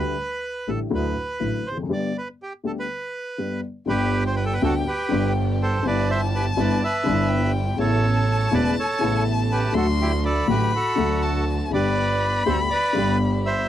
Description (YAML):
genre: tango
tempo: 122 BPM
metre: 4/4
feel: rubato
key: G major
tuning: A4 = 440 Hz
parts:
  - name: bandoneon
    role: melody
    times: 0.0-13.7 s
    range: E4 to E5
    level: -26 LUFS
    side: right 2 dB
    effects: none
  - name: dark upright piano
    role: accompaniment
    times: 0.0-13.7 s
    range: E1 to G4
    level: -25 LUFS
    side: left 4 dB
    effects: none
  - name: rich double bass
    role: bass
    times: 0.0-13.7 s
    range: E1 to D2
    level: -25 LUFS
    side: right 2 dB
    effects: none
  - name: warm violin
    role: second line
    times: 3.9-13.7 s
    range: G5 to C6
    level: -28 LUFS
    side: left 3 dB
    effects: none
  - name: rich symphonic string section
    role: stabs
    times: 3.9-13.7 s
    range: A3 to A4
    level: -33 LUFS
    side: right 8 dB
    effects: none
room: little or no reverb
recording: dry, close 1970s-style studio recording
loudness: -20 LUFS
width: side -11 dB against mid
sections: 0.0-3.9 A section; 3.9-13.7 A section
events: break 1.9-3.9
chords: 0.0 Dsus4; 0.9 Dadd9; 1.9 G; 5.8 Em7/G; 7.8 Aadd9; 9.7 D; 11.7 G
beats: 0.43 0.92 1.41 | 1.90 2.39 2.89 3.38 | 3.88 4.37 4.86 5.36 | 5.84 6.33 6.82 7.30 | 7.79 8.28 8.77 9.25 | 9.74 10.23 10.72 11.22 | 11.72 12.21 12.71 13.20